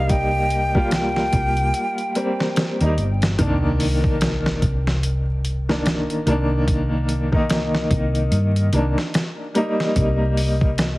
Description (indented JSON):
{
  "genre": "trip hop",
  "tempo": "73 BPM",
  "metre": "4/4",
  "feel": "swing 59% on 16ths",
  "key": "C minor",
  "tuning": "A4 = 440 Hz",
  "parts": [
    { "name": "breathy bright jazz flute", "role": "melody", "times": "0.0-2.5 s", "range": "F5 to G5", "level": "-25 LUFS", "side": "equal", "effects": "tape echo" },
    { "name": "clear upright piano", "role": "accompaniment", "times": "0.0-11.0 s", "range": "Eb3 to F4", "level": "-23 LUFS", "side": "equal", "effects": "tremolo, tape echo" },
    { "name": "hollow-body short-scale fingered electric bass", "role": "bass", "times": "0.0-11.0 s", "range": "G1 to G2", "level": "-21 LUFS", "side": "equal", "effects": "none" },
    { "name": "dusty soul sampler-style drum kit", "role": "drums", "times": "0.1-11.0 s", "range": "hi-hat, kick drum, snare drum", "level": "-22 LUFS", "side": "equal", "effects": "none" },
    { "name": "sub drop", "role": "sound effects", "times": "3.4-6.7 s", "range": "none", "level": "-30 LUFS", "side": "equal", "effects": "none" }
  ],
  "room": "light reverb",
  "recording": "heavily compressed radio sound, vinyl crackle",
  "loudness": "-18 LUFS",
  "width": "side -19 dB against mid",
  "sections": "0.0-3.4 A section; 3.4-11.0 B section",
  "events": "impact 3.4-6.7",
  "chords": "0.0 Eb/C; 3.4 Cm9; 10.0 Eb/C",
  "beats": "| 0.10 0.92 1.74 2.56 | 3.39 4.21 5.03 5.85 | 6.67 7.50 8.32 9.14 | 9.96 10.78"
}